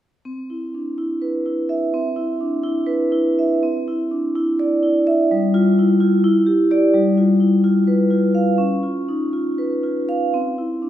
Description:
classical, contemporary piece for solo vibraphone; 232-263 BPM (eighths); 7/8; rubato; C major; A4 = 440 Hz
vibraphone with medium hard mallets; solo; 0.3-10.9 s; G3 to F5; -16 LUFS; equal
wet recital hall reverb, RT60 1.4 s; recorded in a church or concert hall; -16 LUFS; side -12 dB against mid
0.3-3.6 A section; 3.6-10.9 B section
0.3 Cmaj9; 3.6 Cadd9; 5.3 Fsus2/G; 6.2 Em7; 6.9 G6; 8.6 Db9; 10.3 Cadd9

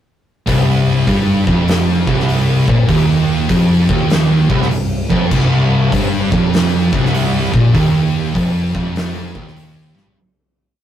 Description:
stoner and doom metal; 99 BPM; 4/4; swing 66% on 8ths; C minor; A4 = 440 Hz
scooped high-gain guitar; riff; 0.5-10.2 s; C2 to Bb2; -22 LUFS; left 2 dB; distortion
thick fuzz guitar; riff; 0.5-10.2 s; C2 to Bb2; -18 LUFS; left 4 dB; distortion
thick fuzz guitar; riff; 0.5-10.2 s; C2 to Bb2; -15 LUFS; right 3 dB; distortion
picked electric bass; bass; 0.5-10.1 s; C1 to Bb1; -25 LUFS; left 1 dB; overdrive
oversized low-tuned drum kit; drums; 0.5-10.2 s; crash cymbal, hi-hat, kick drum, snare drum, toms; -19 LUFS; left 1 dB
light reverb; rough rehearsal-room recording, warm saturation; -12 LUFS; side -10 dB against mid
0.5-10.2 riff
fade-out 7.7-10.2; drum fill 9.9-10.2
0.5 Cm

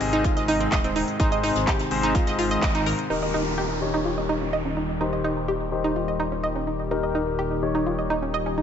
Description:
progressive house; 126 BPM; 4/4; straight; Eb mixolydian; A4 = 440 Hz
warm analog pad; sustained chords; 0.0-8.6 s; Bb2 to G4; -31 LUFS; equal; chorus, sidechain pumping
bright concert grand piano; stabs; 0.0-8.6 s; Ab2 to Eb5; -27 LUFS; left 4 dB; sidechain pumping, low-pass filter, tape echo
dark detuned saw bass; bass; 0.0-8.6 s; Eb1 to Ab1; -32 LUFS; equal; sidechain pumping
natural country drum kit; drums; 0.0-3.0 s; hi-hat, snare drum; -38 LUFS; left 2 dB; sidechain pumping on hats, high-pass filter on hats, high-pass filter on snare, high-pass filter on room
pop drum kit; drums; 0.0-3.1 s; handclaps, hi-hat; -32 LUFS; equal; low-pass filter on hats, low-pass filter on snare
analog pluck; arpeggios; 0.1-8.6 s; C4 to Eb5; -26 LUFS; right 2 dB; chorus, sidechain pumping, tape echo
electronic kick drum; drums; 0.2-2.7 s; -24 LUFS; equal
downlifter; sound effects; 3.1-6.9 s; -34 LUFS; right 1 dB
light reverb, studio reverb; nothing above 7.8 kHz; -22 LUFS; side -8 dB against mid
0.0-3.1 A section; 3.1-8.6 B section
band accent 2.6
0.0 Ab; 3.1 Eb

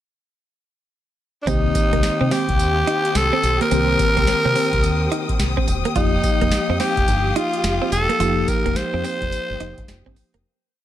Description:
R&B, new jack swing; 107 BPM; 4/4; swing 63% on 16ths; C minor; A4 = 440 Hz
growling tenor saxophone; melody; 1.4-10.2 s; D4 to C5; -21 LUFS; equal
mellow tine electric piano; accompaniment; 1.5-10.5 s; Eb3 to G4; -26 LUFS; left 2 dB; medium stereo tremolo
warm studio string section; sustained chords; 1.5-10.4 s; G4 to Eb6; -29 LUFS; left 3 dB
direct-recorded clean electric guitar; riff; 1.5-10.4 s; Bb3 to F4; -27 LUFS; right 6 dB; wide subtle chorus
deep dub fingered electric bass; bass; 1.5-10.4 s; E1 to C3; -23 LUFS; equal
booming analog drum machine; drums; 1.5-10.4 s; hi-hat, kick drum, snare drum, tambourine; -23 LUFS; equal
light reverb, digital ambience; -17 LUFS; side -12 dB against mid
0.0-1.5 pickup bar; 1.5-10.4 chorus
fade-out 8.2-10.4
0.0 N.C.; 1.5 Cm7; 6.0 F9sus4

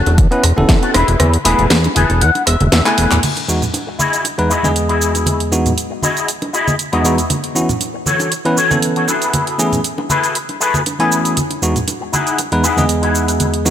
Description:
nu-disco, nu disco; 118 BPM; 4/4; swing 54% on 16ths; E major; A4 = 439 Hz
electric guitar with an envelope filter; riff; 0.0-13.5 s; E3 to G#5; -18 LUFS; left 3 dB; ensemble chorus, low-pass filter, ping-pong delay
fat analog bass; bass; 0.1-3.2 s; E1 to E2; -14 LUFS; equal
house drum kit; drums; 0.1-13.7 s; cabasa, crash cymbal, handclaps, hi-hat, rim click, snare drum; -19 LUFS; right 2 dB
bongos and congas; percussion; 0.1-13.7 s; -22 LUFS; right 1 dB
electronic kick drum; drums; 0.2-0.8 s; -12 LUFS; equal
bell-like tine electric piano; accompaniment; 0.3-13.7 s; E2 to G#5; -18 LUFS; equal; vintage 12-bit sampler grit, sidechain pumping, ping-pong delay
light reverb; -13 LUFS; side -10 dB against mid
0.0-3.2 A section; 3.2-13.7 B section
filter sweep on clean electric guitar 0.0-3.2; kick drops out 1.2-3.2; clean electric guitar fill 1.7-3.2; drum fill 2.9-3.2
0.0 A6/E; 0.9 Eadd11; 3.2 Emaj9; 7.3 A6/E; 9.1 F#m11/E; 11.4 Emaj9

